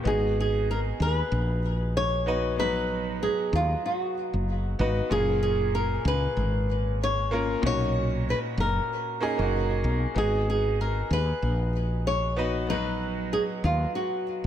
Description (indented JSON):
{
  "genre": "sunset chillout",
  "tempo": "95 BPM",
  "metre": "4/4",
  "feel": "swing 56% on 16ths",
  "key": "G# dorian",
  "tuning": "A4 = 440 Hz",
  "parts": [
    { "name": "warm grand piano", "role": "accompaniment", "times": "0.0-14.5 s", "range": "A#2 to B4", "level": "-31 LUFS", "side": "moving between left 3 dB and right 5 dB", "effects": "auto-pan, digital delay" },
    { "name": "flamenco guitar", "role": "melody", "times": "0.1-14.5 s", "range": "E#4 to C#5", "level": "-28 LUFS", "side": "equal", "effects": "ping-pong delay" },
    { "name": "woody fretless electric bass", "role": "bass", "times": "0.1-14.5 s", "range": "F#1 to D#2", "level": "-27 LUFS", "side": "equal", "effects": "none" }
  ],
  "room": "light reverb, small room ambience",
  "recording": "none",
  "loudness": "-24 LUFS",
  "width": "side -10 dB against mid",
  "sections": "0.1-14.5 A section",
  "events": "none",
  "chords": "0.1 G#m7; 5.1 F#maj7; 7.6 Bmaj9; 10.2 G#m7",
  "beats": "| 0.05 0.69 1.32 1.95 | 2.58 3.21 3.84 4.47 | 5.11 5.74 6.37 7.00 | 7.63 8.27 8.90 9.53 | 10.16 10.79 11.42 12.05 | 12.69 13.32 13.95"
}